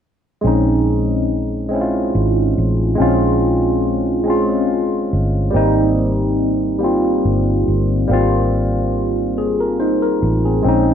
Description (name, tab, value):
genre	slow six-eight R&B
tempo	47 BPM (dotted quarters)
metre	6/8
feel	straight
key	Bb dorian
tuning	A4 = 444 Hz
part	barky tine electric piano	accompaniment	0.4-10.9 s	G3 to C5	-16 LUFS	equal	overdrive, phaser
part	vintage muted fingered electric bass	bass	0.4-10.9 s	G1 to Bb1	-19 LUFS	equal	none
room	little or no reverb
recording	dry, close 1970s-style studio recording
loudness	-14 LUFS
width	side -8 dB against mid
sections	0.4-10.9 A section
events	none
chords	0.4 Bbm11; 5.5 Abmaj9